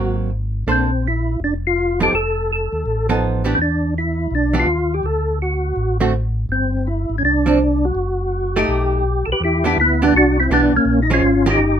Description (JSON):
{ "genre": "jazz", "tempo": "165 BPM", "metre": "4/4", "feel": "swing 65% on 8ths", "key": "unclear", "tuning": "A4 = 440 Hz", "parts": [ { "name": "percussive tonewheel organ", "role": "melody", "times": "0.0-11.8 s", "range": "A#3 to B4", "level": "-17 LUFS", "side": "equal", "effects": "slow rotary speaker, chorus vibrato" }, { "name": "archtop guitar, miked and amplified", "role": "accompaniment", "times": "0.0-11.6 s", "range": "D3 to C5", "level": "-20 LUFS", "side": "right 4 dB", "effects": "none" }, { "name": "mellow tonewheel organ", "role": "bass", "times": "0.0-11.8 s", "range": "F1 to E2", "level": "-21 LUFS", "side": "left 1 dB", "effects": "chorus vibrato, slow rotary speaker" } ], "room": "light reverb", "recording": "minimal, uncompressed stereo recording", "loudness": "-16 LUFS", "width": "side -8 dB against mid", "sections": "0.0-9.4 A section; 9.4-11.8 B section", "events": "none", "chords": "0.0 Ab9; 0.7 Bbmaj9; 2.1 F7#11; 3.6 E7(no3); 5.0 D; 6.5 Gsus4; 8.0 F#m6; 8.7 Baug7; 9.4 Em7; 10.9 A#m7" }